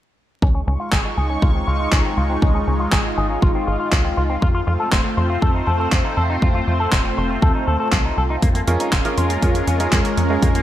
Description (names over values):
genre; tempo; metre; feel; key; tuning
italo disco; 120 BPM; 4/4; straight; Db major; A4 = 440 Hz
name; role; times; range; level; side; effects
lush unison pad; sustained chords; 0.4-10.6 s; Ab3 to Db6; -23 LUFS; equal; chorus, phaser
electric guitar with an envelope filter; arpeggios; 0.4-10.6 s; F3 to C5; -25 LUFS; left 2 dB; low-pass filter, ping-pong delay
tight sequencer bass; bass; 0.4-10.6 s; F1 to F2; -21 LUFS; equal; none
electronic kick drum; drums; 0.4-10.5 s; none; -18 LUFS; equal; none
house drum kit; drums; 0.9-10.6 s; handclaps, hi-hat; -25 LUFS; equal; none
clear grand piano; stabs; 8.7-10.6 s; Db4 to Bb4; -24 LUFS; right 2 dB; ping-pong delay
room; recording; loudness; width
light reverb, digital ambience; vinyl crackle; -16 LUFS; side -12 dB against mid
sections
0.4-10.6 A section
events
filter sweep on clean electric guitar 0.4-10.6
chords
0.4 Dbadd9; 4.4 F; 8.4 Bbm7/F